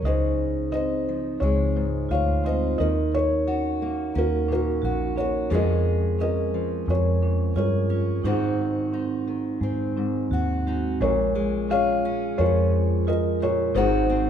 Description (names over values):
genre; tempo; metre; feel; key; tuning
acoustic folk-pop ballad; 88 BPM; 4/4; straight; unclear; A4 = 438 Hz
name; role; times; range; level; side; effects
felt-muted upright piano; melody; 0.0-14.3 s; Gb4 to F5; -26 LUFS; left 1 dB; none
fingerpicked steel-string acoustic guitar; accompaniment; 0.0-14.3 s; F2 to Ab4; -30 LUFS; left 3 dB; none
vibraphone with medium hard mallets; arpeggios; 0.0-14.3 s; Ab3 to Gb4; -28 LUFS; right 4 dB; none
vintage muted fingered electric bass; bass; 0.0-14.3 s; Ab1 to Ab2; -26 LUFS; equal; none
room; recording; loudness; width
moderate concert hall reverb, RT60 2.0 s; minimal, uncompressed stereo recording; -21 LUFS; side -8 dB against mid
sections
0.0-11.0 A section; 11.0-14.3 B section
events
none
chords
0.0 Dbmaj9; 2.8 Ebm7; 5.5 Bbm7/F; 8.2 Ab7; 11.0 Bbm7; 13.8 Ab7